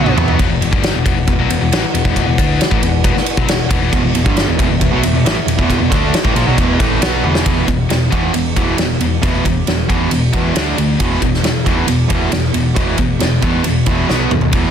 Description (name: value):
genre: hard rock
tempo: 136 BPM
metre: 4/4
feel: straight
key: unclear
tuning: A4 = 441 Hz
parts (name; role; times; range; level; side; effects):
- dark analog pad; sustained chords; 0.0-7.4, 14.5-14.7 s; B3 to F#5; -26 LUFS; left 1 dB; wide subtle chorus, plate reverb
- crunchy overdriven guitar; riff; 0.0-0.4, 3.9-14.7 s; E2 to D4; -18 LUFS; right 10 dB; none
- scooped high-gain guitar; riff; 0.0-14.7 s; E2 to D4; -18 LUFS; left 8 dB; distortion
- hollow-body short-scale picked electric bass; bass; 0.0-14.7 s; E1 to E2; -20 LUFS; equal; none
- big rock drum kit; drums; 0.1-14.6 s; kick drum, ride cymbal, snare drum, toms; -16 LUFS; equal; none
room: light reverb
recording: dense, heavily limited modern master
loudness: -12 LUFS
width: side -8 dB against mid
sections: 0.4-7.5 A section; 7.5-14.7 B section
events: drum fill 0.0-0.4, 7.2, 14.1-14.5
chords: 0.4 E5; 10.6 D5; 11.0 E5; 14.1 B5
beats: | 0.39 0.83 1.27 1.72 | 2.16 2.60 3.04 3.48 | 3.92 4.36 4.80 5.25 | 5.69 6.13 6.57 7.01 | 7.46 7.90 8.34 8.78 | 9.23 9.67 10.11 10.55 | 11.00 11.44 11.88 12.32 | 12.77 13.21 13.65 14.09 | 14.54